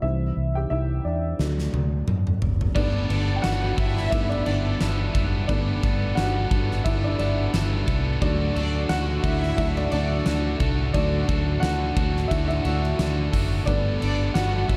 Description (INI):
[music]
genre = piano-driven pop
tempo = 88 BPM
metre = 4/4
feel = swing 56% on 16ths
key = G major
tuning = A4 = 440 Hz
[part]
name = dark upright piano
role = accompaniment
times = 0.0-14.8 s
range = E3 to G5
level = -31 LUFS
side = equal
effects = none
[part]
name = vintage muted fingered electric bass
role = bass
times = 0.0-14.8 s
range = F#1 to F#2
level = -27 LUFS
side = equal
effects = none
[part]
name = huge arena drum kit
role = drums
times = 1.4-14.8 s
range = crash cymbal, hi-hat, kick drum, ride cymbal, snare drum, toms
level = -29 LUFS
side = equal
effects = none
[part]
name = sweeping resonant pad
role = sustained chords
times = 2.8-14.8 s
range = D3 to B4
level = -36 LUFS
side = equal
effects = chorus
[part]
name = crunchy overdriven guitar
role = riff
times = 2.8-14.8 s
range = D3 to A4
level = -33 LUFS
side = equal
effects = none
[part]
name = warm studio violin section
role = second line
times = 3.1-14.8 s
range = D4 to F#5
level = -34 LUFS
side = equal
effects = none
[sound]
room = light reverb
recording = dark, warm production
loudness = -24 LUFS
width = mono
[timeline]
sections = 0.0-2.8 A section; 2.8-14.8 B section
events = upright piano solo 0.0-2.8, 2.8-14.8; drum fill 1.4-2.8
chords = 0.0 C; 1.4 D; 2.8 Gadd9; 8.2 D; 13.7 Gadd9